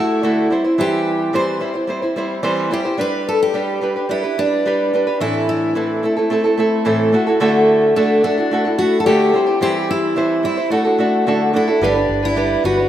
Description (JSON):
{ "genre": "acoustic pop", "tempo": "109 BPM", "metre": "4/4", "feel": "straight", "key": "G major", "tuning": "A4 = 440 Hz", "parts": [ { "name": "picked steel-string acoustic guitar", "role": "melody", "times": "0.0-12.9 s", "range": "D4 to C5", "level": "-19 LUFS", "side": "equal", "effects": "none" }, { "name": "nylon-string guitar", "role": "accompaniment", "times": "0.0-12.9 s", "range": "A2 to C5", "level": "-17 LUFS", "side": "equal", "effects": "none" }, { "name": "vintage muted fingered electric bass", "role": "bass", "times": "11.8-12.9 s", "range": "G1", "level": "-24 LUFS", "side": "equal", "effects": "none" } ], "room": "moderate lush hall reverb, RT60 2.6 s", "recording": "rough home demo mix", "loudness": "-15 LUFS", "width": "side -11 dB against mid", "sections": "0.0-11.8 A section; 11.8-12.9 B section", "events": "none", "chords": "0.0 Dadd9; 0.5 C/E; 3.0 G; 5.2 Am; 7.1 Dadd9; 9.3 C/E; 10.7 D; 11.8 G" }